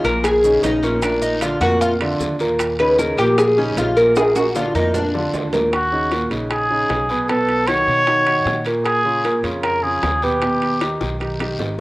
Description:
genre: Afro-Cuban jazz.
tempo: 153 BPM.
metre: 4/4.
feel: straight.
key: unclear.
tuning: A4 = 440 Hz.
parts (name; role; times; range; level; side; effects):
oud; second line; 0.0-5.6 s; Db4 to Cb5; -17 LUFS; left 1 dB; cassette tape.
upright bass; bass; 0.0-11.8 s; Ab1 to B2; -27 LUFS; equal; none.
timbales; percussion; 0.0-11.8 s; none; -28 LUFS; right 4 dB; none.
clear concert grand piano; accompaniment; 0.1-11.7 s; Bb2 to Cb5; -21 LUFS; right 1 dB; cassette tape.
guiro; percussion; 0.1-11.8 s; none; -35 LUFS; left 2 dB; none.
maracas; percussion; 0.1-5.7 s; none; -36 LUFS; right 4 dB; none.
bongos; percussion; 0.2-11.7 s; none; -30 LUFS; left 4 dB; none.
breathy trumpet; melody; 5.7-11.0 s; Gb4 to C#5; -18 LUFS; equal; cassette tape.
room: wet spring reverb, RT60 1.4 s, small room ambience.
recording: home recording on cassette.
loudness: -16 LUFS.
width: side -20 dB against mid.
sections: 0.0-5.7 A section; 5.7-11.8 B section.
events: oud solo 0.0-5.7; drum fill 4.2-5.7, 11.0-11.8.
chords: 0.0 Eb5; 1.0 Bb; 2.6 Eb5; 4.2 Bb; 5.7 Ebm7; 7.3 B9; 8.9 Bbm7; 10.4 Ebaug.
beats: 0.24 0.64 | 1.03 1.42 1.81 2.20 | 2.60 2.99 3.38 3.77 | 4.16 4.55 4.94 5.33 | 5.72 6.12 6.51 6.90 | 7.29 7.68 8.07 8.46 | 8.86 9.25 9.64 10.03 | 10.42 10.81 11.20 11.60.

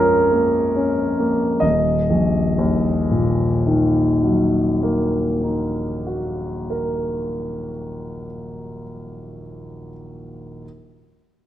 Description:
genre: classical, impressionist solo piano.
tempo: 35 BPM.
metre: 4/4.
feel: rubato.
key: Eb minor.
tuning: A4 = 441 Hz.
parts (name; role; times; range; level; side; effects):
warm concert grand piano; solo; 0.0-10.7 s; Eb1 to Eb5; -18 LUFS; equal; none.
room: wet scoring stage reverb, RT60 1.7 s.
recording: none.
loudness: -17 LUFS.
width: side -12 dB against mid.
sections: 0.0-1.6 A section; 1.6-8.4 B section.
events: slowing down 0.0-1.6.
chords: 0.0 Bbm7; 1.6 Ebm.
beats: | 1.61 3.29 5.02 6.74.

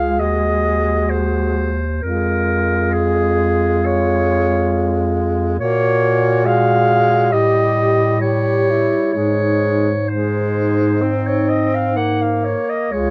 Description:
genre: classical, lyrical piece for single-reed quartet.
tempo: 66 BPM.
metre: 4/4.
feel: uneven beats, rubato.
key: unclear.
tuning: A4 = 440 Hz.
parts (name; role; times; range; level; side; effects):
warm clarinet; melody; 0.0-13.1 s; Ab4 to Gb5; -22 LUFS; equal; none.
mellow alto saxophone; second line; 0.0-13.1 s; Eb4 to G4; -24 LUFS; equal; none.
warm tenor saxophone; accompaniment; 0.0-13.1 s; G3 to C4; -23 LUFS; equal; none.
warm bass clarinet; bass; 0.0-13.1 s; Db2 to Bb2; -22 LUFS; equal; none.
room: little or no reverb.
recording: close, detailed microphones.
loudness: -17 LUFS.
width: mono.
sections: 0.0-13.1 A section.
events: none.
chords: 0.2 Ab7/Eb; 2.0 Db/F; 5.6 Gb/Bb; 7.3 A7; 9.2 Ab.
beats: 0.20 1.11 | 2.03 2.93 3.86 4.73 | 5.59 6.45 7.33 8.22 | 9.15 10.10 11.03 11.97 | 12.92.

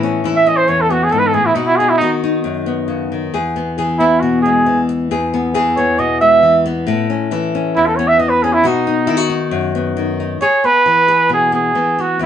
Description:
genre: highlife.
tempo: 136 BPM.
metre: 4/4.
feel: straight.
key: E major.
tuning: A4 = 440 Hz.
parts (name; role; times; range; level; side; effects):
nylon-string guitar; accompaniment; 0.0-12.3 s; E2 to G#4; -16 LUFS; left 3 dB; none.
warm trumpet; melody; 0.4-12.3 s; D#4 to E5; -12 LUFS; right 2 dB; none.
room: moderate studio ambience, RT60 0.5 s.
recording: band playing live in one room, nothing above 10.7 kHz.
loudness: -12 LUFS.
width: side -9 dB against mid.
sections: 0.0-10.4 A section; 10.4-12.3 B section.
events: trumpet solo 0.0-10.4.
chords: 0.0 Aadd9; 1.6 B; 3.3 E; 6.9 Aadd9; 8.6 B; 10.4 E.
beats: 0.24 0.69 1.13 | 1.57 2.01 2.46 2.90 | 3.34 3.78 4.22 4.66 | 5.11 5.55 5.99 6.43 | 6.87 7.31 7.75 8.19 | 8.63 9.07 9.52 9.96 | 10.40 10.84 11.28 11.72 | 12.16.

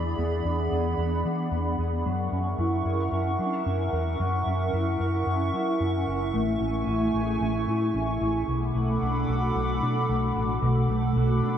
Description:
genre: dream pop.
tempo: 112 BPM.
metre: 4/4.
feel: straight.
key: B dorian.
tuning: A4 = 441 Hz.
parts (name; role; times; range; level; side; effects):
hollow soft pad; sustained chords; 0.0-11.6 s; A3 to D6; -29 LUFS; right 1 dB; chorus.
mellow electric guitar; arpeggios; 0.0-11.6 s; B2 to A#4; -28 LUFS; equal; ensemble chorus, analog delay.
vintage muted fingered electric bass; bass; 0.0-11.6 s; F#1 to F#3; -29 LUFS; equal; none.
room: wet huge ambient reverb, RT60 7.3 s.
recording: dreamy mix soaked in reverb.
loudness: -24 LUFS.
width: side -9 dB against mid.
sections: 0.0-10.6 A section.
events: none.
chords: 0.0 E7; 2.1 F#7; 6.3 Amaj7; 8.5 Bm7.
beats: 0.45 0.98 1.52 | 2.05 2.59 3.12 3.66 | 4.20 4.73 5.27 5.80 | 6.34 6.88 7.41 7.95 | 8.48 9.02 9.55 10.09 | 10.62 11.16.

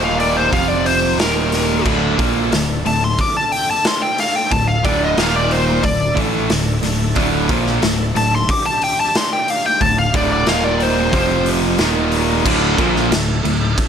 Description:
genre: hard rock.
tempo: 91 BPM.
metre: 4/4.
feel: straight.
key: D minor.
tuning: A4 = 440 Hz.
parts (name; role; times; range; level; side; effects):
bluesy overdriven lead guitar; melody; 0.0-11.5 s; Bb4 to D6; -18 LUFS; left 2 dB; distortion.
crunchy overdriven guitar; riff; 0.0-13.7 s; D2 to Bb3; -20 LUFS; right 13 dB; none.
high-gain distorted guitar; riff; 0.0-13.7 s; D2 to Bb3; -21 LUFS; left 9 dB; distortion.
modern bright picked electric bass; bass; 0.0-13.8 s; D1 to Bb1; -23 LUFS; equal; none.
raw garage drum kit; drums; 0.2-13.9 s; crash cymbal, hi-hat, kick drum, snare drum; -20 LUFS; equal; none.
overdriven tonewheel organ; sustained chords; 1.9-13.9 s; F3 to E5; -29 LUFS; right 1 dB; slow rotary speaker, chorus vibrato.
overdriven electric guitar; riff; 12.5-13.7 s; D2 to Bb3; -24 LUFS; equal; none.
room: light reverb.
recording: none.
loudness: -14 LUFS.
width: side -8 dB against mid.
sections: 0.0-12.4 A section; 12.4-13.9 B section.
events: lead electric guitar solo 0.0-12.4.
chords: 0.0 Eb5; 0.5 F5; 1.2 Eb5; 1.9 Dm; 5.2 Eb5; 5.8 Dm; 10.5 Eb5; 11.1 F5; 11.8 Eb5; 12.4 Dm.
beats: 0.53 1.19 | 1.85 2.52 3.18 3.85 | 4.51 5.17 5.84 6.50 | 7.16 7.83 8.49 9.15 | 9.81 10.47 11.13 11.79 | 12.45 13.11 13.77.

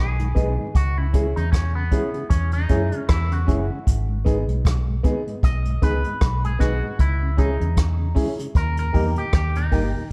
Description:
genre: roots reggae.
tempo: 77 BPM.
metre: 4/4.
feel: swing 57% on 16ths.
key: G# minor.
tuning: A4 = 441 Hz.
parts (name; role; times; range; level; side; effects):
electric guitar with an envelope filter; accompaniment; 0.0-10.1 s; B3 to D#5; -32 LUFS; equal; tape echo.
vintage muted fingered electric bass; bass; 0.0-9.9 s; F#1 to F#2; -25 LUFS; equal; none.
mellow tonewheel organ; accompaniment; 0.2-10.0 s; D#2 to D#4; -34 LUFS; equal; chorus vibrato, slow rotary speaker.
vintage brush drum kit; drums; 0.2-9.9 s; hi-hat, kick drum, rim click; -23 LUFS; equal; none.
clear upright piano; stabs; 0.3-10.0 s; A#3 to G#4; -31 LUFS; equal; none.
room: light reverb.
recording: dark, warm production.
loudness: -21 LUFS.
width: mono.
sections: 0.0-10.1 A section.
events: clean electric guitar solo 0.0-10.1.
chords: 0.0 G#m; 0.8 C#m; 3.9 G#m; 7.0 C#m; 8.6 D#.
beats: | 0.75 1.53 2.31 3.09 | 3.87 4.65 5.43 6.21 | 6.99 7.77 8.55 9.33.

